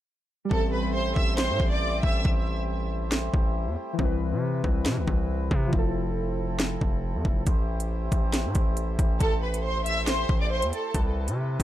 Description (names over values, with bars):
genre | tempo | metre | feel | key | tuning
hip hop, drill | 138 BPM | 4/4 | half-time | A minor | A4 = 445 Hz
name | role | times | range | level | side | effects
warm studio violin section | melody | 0.5-2.2, 9.2-10.9 s | A4 to E6 | -29 LUFS | right 1 dB | tape echo
warbly lo-fi synth keys | accompaniment | 0.5-7.5 s | E3 to B4 | -32 LUFS | left 1 dB | chorus
pedal harmonium | sustained chords | 0.5-11.6 s | C3 to C5 | -35 LUFS | left 1 dB | stereo widening
distorted 808-style bass | bass | 0.5-11.6 s | F1 to C3 | -28 LUFS | equal | distortion
drill drum kit | drums | 0.5-11.6 s | hi-hat, kick drum, snare drum | -26 LUFS | equal | none
room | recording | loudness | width
little or no reverb | dark, warm production | -24 LUFS | side -13 dB against mid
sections
0.5-11.6 A section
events
hi-hats muted 0.5-7.5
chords
0.5 Am7; 4.0 Cmaj7; 5.7 Fmaj7; 7.5 Am7; 10.9 Cmaj7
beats
| 0.51 0.94 1.38 1.81 | 2.25 2.68 3.12 3.55 | 3.99 4.42 4.86 5.29 | 5.73 6.16 6.60 7.03 | 7.47 7.90 8.34 8.77 | 9.21 9.64 10.07 10.51 | 10.95 11.38